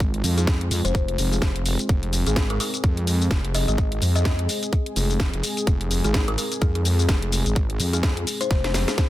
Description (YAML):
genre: bass house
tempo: 127 BPM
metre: 4/4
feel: swing 58% on 16ths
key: F minor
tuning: A4 = 442 Hz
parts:
  - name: dark analog pad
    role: sustained chords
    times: 0.0-9.1 s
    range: Ab3 to Ab4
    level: -31 LUFS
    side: left 1 dB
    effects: chorus, sidechain pumping
  - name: wobble bass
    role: bass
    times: 0.0-8.9 s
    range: F1 to F2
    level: -23 LUFS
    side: equal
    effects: chorus, sidechain pumping
  - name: electronic kick drum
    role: drums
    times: 0.0-9.1 s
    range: none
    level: -21 LUFS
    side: equal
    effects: none
  - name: garage drum kit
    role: drums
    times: 0.0-9.1 s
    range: hi-hat, shaker, snare drum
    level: -27 LUFS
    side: left 1 dB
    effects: none
  - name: kalimba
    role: melody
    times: 0.4-9.1 s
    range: Ab4 to Eb5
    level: -31 LUFS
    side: left 2 dB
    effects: tape echo
room: digital ambience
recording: dense, heavily limited modern master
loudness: -20 LUFS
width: side -15 dB against mid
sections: 0.0-9.1 A section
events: drum fill 8.5-9.1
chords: 0.0 Fm